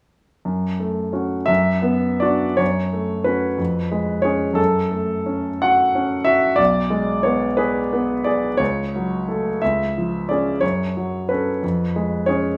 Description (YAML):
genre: classical, romantic character piece for solo piano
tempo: 60 BPM (dotted quarters)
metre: 6/8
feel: rubato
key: F# minor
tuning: A4 = 440 Hz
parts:
  - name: warm concert grand piano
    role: solo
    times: 0.5-12.6 s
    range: B1 to F#5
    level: -20 LUFS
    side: equal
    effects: none
room: light reverb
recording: small room ambience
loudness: -20 LUFS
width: mono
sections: 0.5-2.6 A section; 2.6-12.6 B section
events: none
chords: 0.5 F#m; 1.5 Bm/F#; 2.6 F#m; 3.6 C#7/E#; 4.6 F#m; 6.6 G#dim/B; 8.6 F#m/C#; 9.6 C#; 10.6 F#m; 11.6 C#7/E#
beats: | 0.46 1.49 | 2.60 3.59 | 4.58 5.62 | 6.59 7.59 | 8.60 9.61 | 10.62 11.63